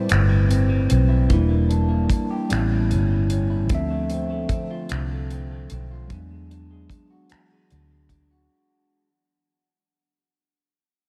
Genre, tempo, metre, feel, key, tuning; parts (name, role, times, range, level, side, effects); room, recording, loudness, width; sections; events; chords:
slow six-eight R&B; 50 BPM (dotted quarters); 6/8; straight; A4 = 439 Hz
electric guitar at the edge of break-up; second line; 0.0-9.1 s; A2 to G4; -33 LUFS; equal
mellow tine electric piano; accompaniment; 0.0-8.5 s; F3 to E5; -28 LUFS; equal
vintage muted fingered electric bass; bass; 0.1-8.5 s; E1 to E2; -24 LUFS; equal
damped 70s drum kit; drums; 0.1-8.3 s; finger snaps, hi-hat, kick drum; -28 LUFS; equal
light reverb; -21 LUFS; mono
0.0-8.5 A section
fade-out 0.0-8.5
0.0 Am7; 1.3 Em7b5; 2.5 A7; 3.7 Dm7; 6.1 E9